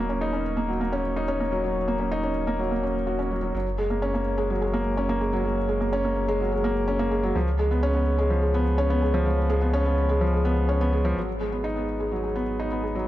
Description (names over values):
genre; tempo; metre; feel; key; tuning
piano and strings electronica; 126 BPM; 4/4; straight; G# dorian; A4 = 440 Hz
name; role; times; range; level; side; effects
felt-muted upright piano; riff; 0.0-13.1 s; E#3 to F#4; -24 LUFS; equal; ping-pong delay
warm sub bass; bass; 0.0-13.1 s; D#1 to C#2; -27 LUFS; equal; none
room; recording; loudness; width
light reverb; none; -22 LUFS; side -14 dB against mid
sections
0.0-11.2 A section; 11.2-13.1 B section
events
none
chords
0.0 D#m7; 3.5 F#add9; 7.4 C#7; 11.2 G#m7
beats
0.21 0.69 1.17 | 1.64 2.12 2.59 3.07 | 3.55 4.02 4.50 4.97 | 5.45 5.93 6.40 6.88 | 7.36 7.83 8.31 8.78 | 9.26 9.74 10.21 10.69 | 11.16 11.64 12.12 12.59 | 13.07